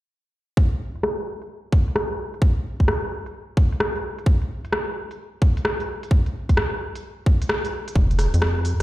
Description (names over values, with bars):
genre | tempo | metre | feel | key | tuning
UK garage, two-step garage | 130 BPM | 4/4 | swing 66% on 16ths | unclear | A4 = 439 Hz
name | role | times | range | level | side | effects
electronic kick drum | drums | 0.6-8.1 s | none | -19 LUFS | equal | none
garage drum kit | drums | 0.7-8.8 s | hi-hat, rim click | -25 LUFS | equal | low-pass filter on hats, low-pass filter on snare, low-pass filter on room
rubbery square bass | bass | 8.0-8.8 s | F1 to F2 | -20 LUFS | equal | none
room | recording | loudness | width
light reverb | played on a big sound system in a bare room, large studio reverb | -20 LUFS | side -16 dB against mid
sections
0.6-8.8 A section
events
filter sweep on drum 0.6-8.8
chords
none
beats
| 0.57 1.03 1.49 1.96 | 2.42 2.88 3.34 3.80 | 4.26 4.72 5.19 5.65 | 6.11 6.57 7.03 7.49 | 7.96 8.42